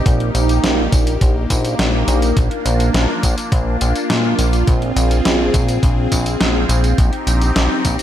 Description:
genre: synthwave.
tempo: 104 BPM.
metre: 4/4.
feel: straight.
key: Bb mixolydian.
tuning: A4 = 440 Hz.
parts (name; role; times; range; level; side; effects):
phased analog pad; sustained chords; 0.0-8.0 s; Bb3 to Ab4; -20 LUFS; equal; phaser, chorus, sidechain pumping.
chorused synth bass; bass; 0.1-8.0 s; Bb1 to Bb2; -17 LUFS; equal; tube saturation.
clean 12-bit digital drum machine; drums; 0.1-8.0 s; hi-hat, snare drum, tambourine; -21 LUFS; equal; gated reverb.
electronic kick drum; drums; 0.1-8.0 s; none; -16 LUFS; equal; none.
room: light reverb, digital ambience.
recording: none.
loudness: -14 LUFS.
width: side -11 dB against mid.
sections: 0.0-8.0 A section.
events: none.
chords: 0.1 Eb/Bb; 2.4 Bb; 4.7 Fm/Bb; 7.0 Cm/Bb.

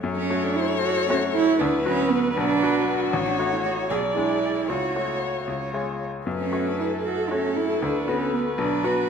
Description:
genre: quick classical-period movement for piano quartet.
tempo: 77 BPM (dotted quarters).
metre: 6/8.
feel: straight.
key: F# minor.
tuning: A4 = 436 Hz.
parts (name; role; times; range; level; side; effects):
warm violin; melody; 0.0-9.1 s; F#4 to C#5; -29 LUFS; left 9 dB; none.
bright grand piano; accompaniment; 0.0-9.1 s; A1 to D5; -27 LUFS; left 3 dB; none.
warm viola; accompaniment; 0.0-9.1 s; A4 to D5; -30 LUFS; right 2 dB; none.
warm cello; second line; 0.2-9.1 s; B3 to G#4; -25 LUFS; right 6 dB; none.
room: wet recital hall reverb, RT60 1.4 s.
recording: none.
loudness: -21 LUFS.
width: side -7 dB against mid.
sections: 0.0-9.1 A section.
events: none.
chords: 0.0 F#m; 1.6 Bm/D; 2.4 Bm; 3.1 F#m/A; 3.9 G#dim/B; 4.7 F#m/C#; 5.5 C#; 6.3 F#m; 7.8 Bm/D; 8.6 B5.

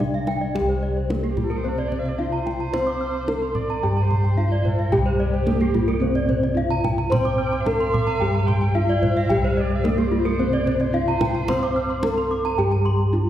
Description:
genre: Balinese gamelan.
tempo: 110 BPM.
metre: 4/4.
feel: straight.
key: C slendro.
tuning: A4 = 439 Hz.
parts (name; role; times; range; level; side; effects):
gamelan-type bronze metallophone; melody; 0.0-13.3 s; Bb3-45c to C5; -25 LUFS; right 1 dB; none.
gamelan-type bronze metallophone; accompaniment; 0.0-13.3 s; C3 to C4; -30 LUFS; left 1 dB; none.
gamelan-type bronze metallophone; arpeggios; 0.0-13.0 s; F4-35c to F6-35c; -29 LUFS; left 5 dB; none.
gamelan-type bossed gongs; bass; 0.0-13.3 s; C2 to C5; -24 LUFS; equal; none.
kendang; percussion; 0.0-12.8 s; none; -29 LUFS; right 1 dB; none.
gamelan-type bronze metallophone; arpeggios; 0.1-12.9 s; G4+25c to D6+30c; -29 LUFS; right 4 dB; slapback echo.
warm erhu; second line; 1.3-12.5 s; G4+23c to G5+26c; -33 LUFS; right 2 dB; none.
room: wet concert hall reverb, RT60 2.0 s.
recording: heard from further back in the room.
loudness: -19 LUFS.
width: side -11 dB against mid.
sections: 0.6-13.3 A section.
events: none.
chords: none.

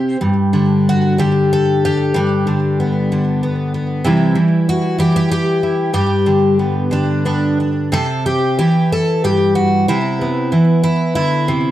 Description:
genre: folk, solo fingerstyle acoustic guitar.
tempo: 94 BPM.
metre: 3/4.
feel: rubato.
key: unclear.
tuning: A4 = 440 Hz.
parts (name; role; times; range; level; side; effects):
picked twelve-string acoustic guitar; solo; 0.0-11.7 s; G2 to C5; -13 LUFS; equal; slapback echo.
room: moderate studio ambience, RT60 0.5 s.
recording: dark, warm production.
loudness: -13 LUFS.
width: side -13 dB against mid.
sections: 0.0-7.9 A section; 7.9-11.7 B section.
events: none.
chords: 0.2 Gadd9; 4.0 C; 5.9 G; 7.9 Cmaj7.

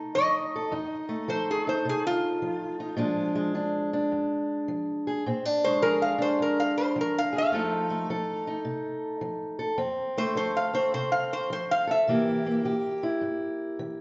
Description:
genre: acoustic country blues, solo or duo.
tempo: 105 BPM.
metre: 4/4.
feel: swing 66% on 8ths.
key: F mixolydian.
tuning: A4 = 440 Hz.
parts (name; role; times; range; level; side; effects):
fingerpicked steel-string acoustic guitar; accompaniment; 0.0-14.0 s; F2 to A4; -30 LUFS; equal; none.
metal-body resonator slide guitar; melody; 0.1-13.0 s; F4 to F5; -29 LUFS; equal; none.
room: wet recital hall reverb, RT60 1.4 s.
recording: recorded in a church or concert hall, nothing above 7.6 kHz.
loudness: -28 LUFS.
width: mono.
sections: 0.0-14.0 A section.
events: resonator guitar played with a steel bar solo 0.0-14.0.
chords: 0.0 F7; 3.0 Bb7; 7.5 F7; 12.1 C7.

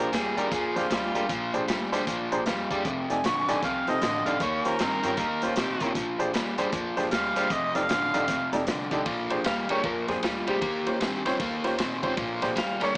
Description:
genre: electric blues shuffle.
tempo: 154 BPM.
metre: 4/4.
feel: swing 63% on 8ths.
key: Bb mixolydian.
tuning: A4 = 440 Hz.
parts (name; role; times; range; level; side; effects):
overdriven harmonica; second line; 0.0-8.5 s; C4 to Db6; -28 LUFS; right 1 dB; none.
clear upright piano; accompaniment; 0.0-12.9 s; Db4 to Bb5; -31 LUFS; right 1 dB; none.
overdriven electric guitar; riff; 0.0-13.0 s; F2 to C4; -29 LUFS; left 1 dB; none.
upright bass; bass; 0.0-13.0 s; F1 to Bb2; -40 LUFS; equal; none.
crunchy breakbeat drum kit; drums; 0.1-13.0 s; hi-hat, kick drum, ride cymbal, snare drum; -33 LUFS; equal; none.
clean lap steel guitar; melody; 9.5-13.0 s; F4 to F5; -30 LUFS; equal; none.
room: moderate lush hall reverb, RT60 1.9 s, small room ambience.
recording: small speaker sound.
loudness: -24 LUFS.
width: side -26 dB against mid.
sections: 0.0-9.1 A section; 9.1-13.0 A section.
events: harmonica solo 0.0-9.1; upright piano fill 2.1-2.9; electric slide guitar solo 9.1-13.0.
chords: 0.0 Bb13; 2.9 F13; 4.4 Eb13; 6.0 Bb13; 7.5 F13; 9.1 Bb13; 10.6 Eb13; 12.2 Bb13.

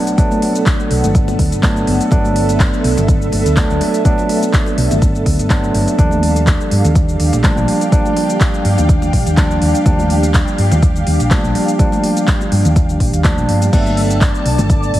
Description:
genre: deep house.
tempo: 124 BPM.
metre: 4/4.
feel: swing 55% on 16ths.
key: G major.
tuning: A4 = 443 Hz.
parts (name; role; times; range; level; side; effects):
hollow soft pad; sustained chords; 0.0-15.0 s; B3 to A5; -25 LUFS; equal; ensemble chorus, sidechain pumping.
tine electric piano; stabs; 0.0-15.0 s; F3 to D4; -18 LUFS; right 1 dB; overdrive, ping-pong delay.
ethereal airy pad; texture; 0.1-15.0 s; B3 to A5; -24 LUFS; right 1 dB; ensemble chorus, built-in reverb, tremolo, sidechain pumping.
deep house drum kit; drums; 0.1-15.0 s; cabasa, crash cymbal, handclaps, hi-hat; -23 LUFS; equal; small room ambience.
electronic kick drum; drums; 0.2-14.8 s; none; -14 LUFS; equal; small room ambience.
congas; percussion; 0.3-14.7 s; none; -24 LUFS; left 1 dB; none.
hollow-body short-scale fingered electric bass; bass; 0.9-15.0 s; G1 to G2; -16 LUFS; equal; tube saturation, sidechain pumping.
mellow horn-like synth lead; melody; 13.7-15.0 s; D5 to E5; -23 LUFS; equal; ensemble chorus, dub echo.
warm studio violin section; texture; 13.7-15.0 s; A5; -29 LUFS; left 1 dB; sidechain pumping.
room: light reverb, digital ambience.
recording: heavily compressed radio sound, vinyl crackle.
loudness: -11 LUFS.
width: side -14 dB against mid.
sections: 0.0-15.0 A section.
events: none.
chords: 0.0 Gmaj9; 6.0 Ebmaj9; 13.7 Gmaj9.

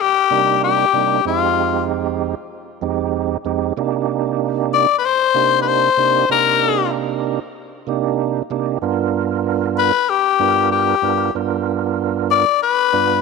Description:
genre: blues.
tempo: 95 BPM.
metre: 4/4.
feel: swing 53% on 16ths.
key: C minor.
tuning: A4 = 439 Hz.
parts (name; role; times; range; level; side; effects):
growling tenor saxophone; melody; 0.0-13.2 s; F4 to D5; -15 LUFS; left 11 dB; none.
tonewheel organ; accompaniment; 0.3-13.2 s; F2 to B4; -20 LUFS; right 11 dB; slow rotary speaker, overdrive, chorus vibrato.
room: light reverb.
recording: 1960s-style stereo with parts hard left and right.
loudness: -15 LUFS.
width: side -4 dB against mid.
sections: 0.0-13.2 A section.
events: none.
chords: 0.0 Cm9; 1.3 Fm9; 3.8 Cm9; 8.8 G7#9.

